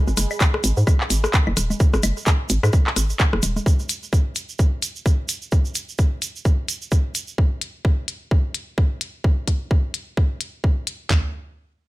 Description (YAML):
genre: minimal techno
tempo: 129 BPM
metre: 4/4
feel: swing 58% on 16ths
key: unclear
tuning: A4 = 440 Hz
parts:
  - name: hollow knocking FM bass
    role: bass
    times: 0.1-3.6 s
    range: D#1 to G#2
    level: -20 LUFS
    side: equal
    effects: sidechain pumping
  - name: egg shaker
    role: percussion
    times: 0.1-7.4 s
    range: none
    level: -29 LUFS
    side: right 6 dB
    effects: none
  - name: minimal click drum kit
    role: drums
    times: 0.2-11.0 s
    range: handclaps, hi-hat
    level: -23 LUFS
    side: left 2 dB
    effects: studio reverb
  - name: electronic rim click, congas, claves and woodblock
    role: percussion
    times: 0.2-3.6 s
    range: none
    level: -26 LUFS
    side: left 1 dB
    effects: studio reverb, tape echo
  - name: garage drum kit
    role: drums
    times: 0.4-11.2 s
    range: handclaps, kick drum, toms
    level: -17 LUFS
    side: equal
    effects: studio reverb
room: little or no reverb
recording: none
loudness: -19 LUFS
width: side -18 dB against mid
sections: 0.0-11.1 A section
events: filter sweep on FM bass 0.0-3.7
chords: none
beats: 0.41 0.87 1.34 | 1.80 2.27 2.73 3.20 | 3.66 4.13 4.59 5.06 | 5.52 5.99 6.45 6.92 | 7.38 7.85 8.31 8.78 | 9.24 9.71 10.17 10.64 | 11.10